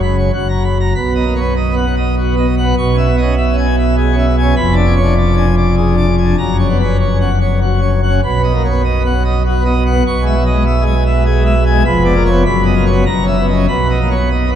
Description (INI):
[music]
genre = classical, organ toccata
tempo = 99 BPM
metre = 3/4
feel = straight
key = B major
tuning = A4 = 441 Hz
[part]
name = pipe organ, plenum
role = solo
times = 0.0-14.6 s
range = F1 to C#6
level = -11 LUFS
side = equal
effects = none
[sound]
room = wet cathedral reverb, RT60 7.0 s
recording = dark, warm production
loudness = -11 LUFS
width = side -10 dB against mid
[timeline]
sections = 1.0-14.6 A section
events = none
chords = 0.3 F#; 1.0 B; 2.8 C#m/B; 4.6 Fdim7; 6.4 F#; 8.2 B; 10.1 C#m/B; 11.9 C#13b9/E#; 12.5 B/F#; 13.1 F#7; 13.7 B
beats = 0.34 | 0.95 1.56 2.17 | 2.77 3.38 3.98 | 4.57 5.17 5.77 | 6.38 7.00 7.61 | 8.23 8.84 9.45 | 10.05 10.66 11.26 | 11.86 12.46 13.06 | 13.68 14.32